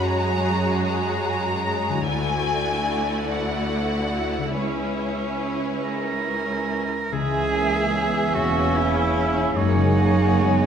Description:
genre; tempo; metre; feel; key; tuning
cinematic; 48 BPM (dotted quarters); 6/8; uneven beats, rubato; C# dorian; A4 = 440 Hz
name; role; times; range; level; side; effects
rich chamber violin section; melody; 0.0-10.7 s; C#5 to A#5; -30 LUFS; left 2 dB; none
warm symphonic violin section; second line; 0.0-10.7 s; F#4 to E5; -30 LUFS; left 3 dB; none
rich symphonic viola section; accompaniment; 0.0-10.7 s; G#3 to F#4; -28 LUFS; right 2 dB; none
concert harp; arpeggios; 0.0-10.7 s; F#2 to C#6; -30 LUFS; left 5 dB; none
rich symphonic cello section; bass; 0.0-10.7 s; C#2 to F#2; -27 LUFS; right 3 dB; none
rich cello; melody; 5.9-10.7 s; D#4 to A#4; -25 LUFS; right 3 dB; none
mellow flute section; second line; 7.1-10.7 s; G#5; -28 LUFS; equal; none
warm oboe; second line; 7.1-10.7 s; C#5 to E5; -30 LUFS; right 1 dB; none
mellow French horn section; sustained chords; 7.1-10.7 s; E3 to G#4; -28 LUFS; equal; none
rich symphonic double bass section; bass; 7.1-10.7 s; E1 to C#2; -30 LUFS; right 2 dB; none
mellow clarinet; second line; 8.4-10.7 s; G#3 to B3; -29 LUFS; equal; none
room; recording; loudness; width
wet scoring stage reverb, RT60 1.8 s; minimal, uncompressed stereo recording; -20 LUFS; side -8 dB against mid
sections
0.0-7.1 A section; 7.1-10.7 A section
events
none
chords
0.0 F#add9; 2.1 Dadd9; 4.6 C#m7; 7.1 C#m; 9.6 F#add9

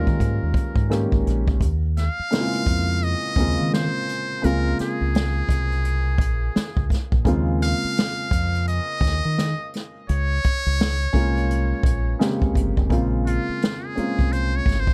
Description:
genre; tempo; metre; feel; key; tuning
R&B, neo-soul; 85 BPM; 4/4; swing 61% on 16ths; Bb dorian; A4 = 439 Hz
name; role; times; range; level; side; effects
trumpet with metal mute; melody; 0.0-14.9 s; F4 to F5; -30 LUFS; equal; none
warm baby grand piano; accompaniment; 0.0-14.9 s; Db3 to G4; -28 LUFS; equal; none
deep dub fingered electric bass; bass; 0.0-14.9 s; F1 to Eb3; -25 LUFS; equal; none
unplugged drum kit; drums; 0.1-14.9 s; hi-hat, kick drum, rim click, snare drum; -25 LUFS; equal; none
room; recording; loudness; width
little or no reverb; none; -22 LUFS; mono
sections
0.0-1.6 A section; 1.6-12.9 B section; 12.9-14.9 C section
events
muted trumpet solo 12.9-14.9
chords
0.0 Eb9sus4; 1.6 Eb13sus4; 4.4 Bbm7; 7.3 Eb13sus4; 10.1 Bbm7; 12.9 Bbm9

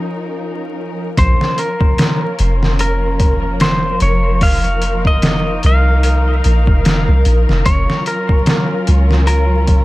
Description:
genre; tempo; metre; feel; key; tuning
trip hop; 74 BPM; 4/4; swing 56% on 16ths; Bb minor; A4 = 440 Hz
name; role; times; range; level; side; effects
muted studio string section; sustained chords; 0.0-9.8 s; F3 to Bb4; -22 LUFS; left 1 dB; none
wind-like tuned noise texture; texture; 0.0-1.2 s; F3 to F4; -31 LUFS; left 3 dB; built-in reverb
clean lap steel guitar; melody; 1.2-9.8 s; Bb4 to F5; -20 LUFS; equal; dub echo
soft 808-style bass; bass; 1.2-9.8 s; F1 to Db2; -14 LUFS; equal; none
trip hop sampler-style drum kit; drums; 1.2-9.8 s; hi-hat, kick drum, snare drum; -15 LUFS; equal; overdrive
room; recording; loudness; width
little or no reverb; echo-heavy mix, vinyl crackle; -12 LUFS; side -18 dB against mid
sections
0.0-1.2 A section; 1.2-9.8 B section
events
none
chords
0.0 Eb5; 1.2 Bbm; 4.4 F7sus4; 7.7 Gbmaj7

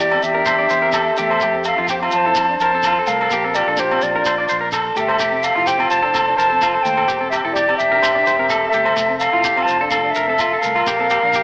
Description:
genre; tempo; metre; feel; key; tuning
highlife guitar band; 127 BPM; 4/4; straight; F major; A4 = 440 Hz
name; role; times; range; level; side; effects
hollow concert flute; melody; 0.0-11.4 s; C5 to A5; -17 LUFS; equal; cassette tape, tape echo
warm trumpet; second line; 0.0-11.4 s; F4 to C5; -24 LUFS; left 1 dB; cassette tape
electric guitar at the edge of break-up; accompaniment; 0.0-11.4 s; A3 to E4; -31 LUFS; left 1 dB; warbly pitch drift, cassette tape
electric guitar at the edge of break-up; arpeggios; 0.0-11.4 s; F4 to D5; -21 LUFS; equal; cassette tape, tape echo
fingered electric bass; bass; 0.0-11.4 s; E1 to F2; -35 LUFS; equal; none
agogo bells; percussion; 0.1-11.2 s; none; -24 LUFS; equal; none
shekere; percussion; 0.2-11.4 s; none; -28 LUFS; right 1 dB; none
room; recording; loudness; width
wet lush hall reverb, RT60 2.6 s; home recording on cassette, AM radio sound; -14 LUFS; side -24 dB against mid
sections
0.0-11.4 A section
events
none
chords
0.0 C/E; 1.4 Fmaj7; 3.3 Bbadd9; 5.2 F; 7.1 C/E; 9.0 Fmaj7; 10.9 Bbadd9

